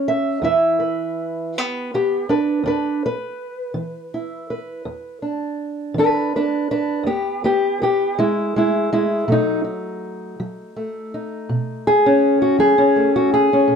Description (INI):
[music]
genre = acoustic country blues, solo or duo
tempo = 54 BPM (dotted quarters)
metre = 12/8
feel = straight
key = unclear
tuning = A4 = 440 Hz
[part]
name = fingerpicked old ladder-braced acoustic guitar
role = solo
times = 0.0-13.8 s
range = E2 to E5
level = -18 LUFS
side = equal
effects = none
[sound]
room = moderate studio reverb, RT60 0.6 s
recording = dark, warm production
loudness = -17 LUFS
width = side -6 dB against mid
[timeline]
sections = 0.0-13.8 A section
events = none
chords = 0.4 E7(no3); 9.3 B7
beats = | 0.43 1.54 2.64 3.75 | 4.85 5.96 7.06 8.17 | 9.27 10.38 11.48 12.59 | 13.70